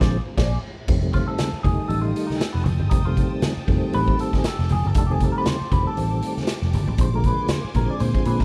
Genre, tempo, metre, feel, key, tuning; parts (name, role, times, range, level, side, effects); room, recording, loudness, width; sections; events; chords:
funk; 118 BPM; 4/4; swing 56% on 16ths; F mixolydian; A4 = 440 Hz
clean electric guitar; accompaniment; 0.0-8.4 s; B3 to D5; -32 LUFS; equal; wah, harmonic tremolo
tonewheel organ; stabs; 0.0-8.4 s; D3 to Eb4; -30 LUFS; equal; overdrive, chorus vibrato, slow rotary speaker, tape echo
picked electric bass; bass; 0.0-8.4 s; F1 to Bb2; -25 LUFS; equal
raw garage drum kit; drums; 0.0-8.4 s; crash cymbal, hi-hat, kick drum, snare drum; -26 LUFS; equal
string machine, full ensemble; sustained chords; 0.9-8.4 s; G5 to Eb6; -41 LUFS; equal; phaser, ensemble chorus
congas; percussion; 0.9-8.4 s; -31 LUFS; equal
little or no reverb; -22 LUFS; mono
0.9-8.4 A section
band accent 0.0-0.9; clean electric guitar solo 0.9-8.4
0.0 Bb9; 0.9 F9; 7.0 Bb9